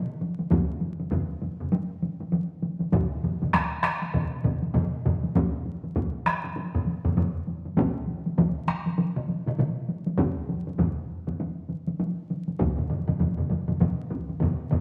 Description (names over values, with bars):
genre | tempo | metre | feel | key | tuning
japanese traditional, taiko drum ensemble | 99 BPM | 4/4 | swing 60% on 16ths | none | none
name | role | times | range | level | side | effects
taiko ensemble | percussion | 0.2-14.8 s | none | -31 LUFS | equal | none
taiko ensemble | percussion | 0.5-14.8 s | none | -32 LUFS | equal | none
taiko ensemble | percussion | 0.5-14.3 s | none | -32 LUFS | equal | none
taiko ensemble | percussion | 2.9-14.8 s | none | -32 LUFS | equal | none
room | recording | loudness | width
wet large studio reverb, RT60 1.4 s | vinyl crackle | -27 LUFS | mono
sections
0.0-14.8 A section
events
none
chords
none